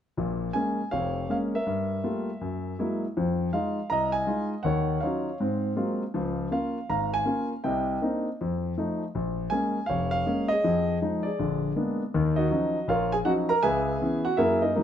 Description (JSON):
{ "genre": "solo jazz", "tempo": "160 BPM", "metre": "4/4", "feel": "swing 64% on 8ths", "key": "Bb minor", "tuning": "A4 = 440 Hz", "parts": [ { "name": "warm concert grand piano", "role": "solo", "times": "0.2-14.8 s", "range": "F1 to Bb5", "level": "-25 LUFS", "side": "equal", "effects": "none" } ], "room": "moderate club reverb, RT60 0.8 s", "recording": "minimal, uncompressed stereo recording", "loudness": "-25 LUFS", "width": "side -9 dB against mid", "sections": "0.2-12.1 A section; 12.1-14.8 B section", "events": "none", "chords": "0.2 Bbm7; 1.7 Gm9; 2.4 Gb9; 3.2 Fm7; 4.6 Ebm9; 5.4 Ab13; 6.1 Db6; 7.6 Cm9; 8.4 F7; 9.1 Bbm7; 10.6 Fm7; 11.4 Bb7b9; 12.1 Ebm9; 13.6 Dbm7", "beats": "| 0.17 0.54 0.91 1.29 | 1.66 2.03 2.41 2.78 | 3.15 3.53 3.90 4.28 | 4.65 5.02 5.40 5.77 | 6.14 6.52 6.89 7.27 | 7.64 8.02 8.39 8.76 | 9.14 9.51 9.89 10.26 | 10.64 11.01 11.38 11.76 | 12.13 12.51 12.88 13.26 | 13.63 14.01 14.38 14.75" }